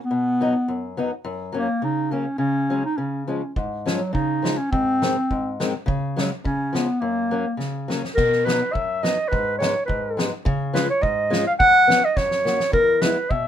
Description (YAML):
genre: alpine folk, alpine dance band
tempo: 104 BPM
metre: 2/4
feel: straight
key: F# major, B major from 8.2 s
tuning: A4 = 439 Hz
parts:
  - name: warm clarinet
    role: melody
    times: 0.0-13.5 s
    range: F#3 to F#5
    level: -20 LUFS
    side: equal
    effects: none
  - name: fingerpicked steel-string acoustic guitar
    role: accompaniment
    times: 0.1-13.5 s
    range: E2 to F#4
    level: -26 LUFS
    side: left 2 dB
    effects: none
  - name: loose indie drum kit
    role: drums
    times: 3.6-13.4 s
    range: crash cymbal, kick drum, snare drum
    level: -26 LUFS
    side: equal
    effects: none
room: light reverb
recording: minimal, uncompressed stereo recording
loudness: -19 LUFS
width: side -10 dB against mid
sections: 0.0-8.2 A section; 8.2-13.5 B section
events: drum fill 7.6-8.2, 12.2-12.7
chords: 0.1 B; 1.2 F#; 2.4 C#sus4; 3.0 C#; 4.7 G#; 5.9 C#sus4; 6.4 C#; 7.0 F#; 8.2 B; 9.3 G#m; 10.4 C#; 11.6 F#sus4; 12.2 F#; 12.7 E